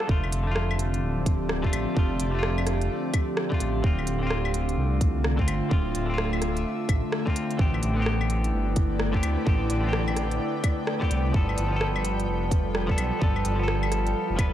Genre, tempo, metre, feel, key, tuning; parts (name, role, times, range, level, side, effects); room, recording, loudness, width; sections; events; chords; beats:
future garage; 128 BPM; 4/4; swing 63% on 16ths; A4 = 440 Hz
semi-hollow electric guitar; accompaniment; 0.0-14.5 s; D3 to B4; -31 LUFS; left 2 dB; sidechain pumping, analog delay
organic electronic drum kit; drums; 0.0-14.5 s; claves, hi-hat, rim click; -32 LUFS; equal; overdrive
airy breathy pad; sustained chords; 0.1-14.5 s; D3 to G5; -30 LUFS; equal; chorus, sidechain pumping
dark detuned saw bass; bass; 0.1-14.5 s; D1 to D2; -27 LUFS; equal; sidechain pumping
electronic kick drum; drums; 0.1-14.5 s; -24 LUFS; equal
wind-like tuned noise texture; texture; 8.6-14.5 s; D5; -39 LUFS; right 1 dB; built-in reverb
light reverb, digital ambience; -23 LUFS; side -11 dB against mid
0.1-14.5 A section
0.1 F6; 3.8 Dm7; 7.6 Am11; 11.3 G9
| 0.09 0.56 1.03 1.50 | 1.97 2.44 2.90 3.37 | 3.84 4.31 4.78 5.25 | 5.72 6.19 6.65 7.12 | 7.59 8.06 8.53 9.00 | 9.47 9.94 10.40 10.87 | 11.34 11.81 12.28 12.75 | 13.22 13.69 14.15